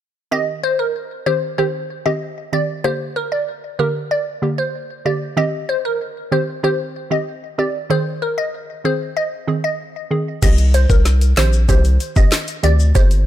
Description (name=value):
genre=dancehall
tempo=95 BPM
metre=4/4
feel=straight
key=C minor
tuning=A4 = 440 Hz
part: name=glassy wavetable pluck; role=melody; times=0.3-13.1 s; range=Bb4 to Eb5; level=-22 LUFS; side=left 1 dB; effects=chorus, ping-pong delay
part: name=hollow square pluck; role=accompaniment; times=0.3-13.3 s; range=D3 to Ab4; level=-22 LUFS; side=right 3 dB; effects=chorus, sidechain pumping
part: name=round analog bass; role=bass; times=10.4-13.3 s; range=G1 to D2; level=-14 LUFS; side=equal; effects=none
part: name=island pop drum kit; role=drums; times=10.4-13.3 s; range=crash cymbal, handclaps, hi-hat, kick drum, snare drum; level=-15 LUFS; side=equal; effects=none
part: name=tube shaker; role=percussion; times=10.4-13.3 s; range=none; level=-33 LUFS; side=left 11 dB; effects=none
room=little or no reverb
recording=none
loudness=-16 LUFS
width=side -12 dB against mid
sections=0.3-10.4 A section; 10.4-13.3 B section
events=none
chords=0.3 Cm; 2.8 Gm; 5.4 Cm; 7.9 Ab; 10.4 Cm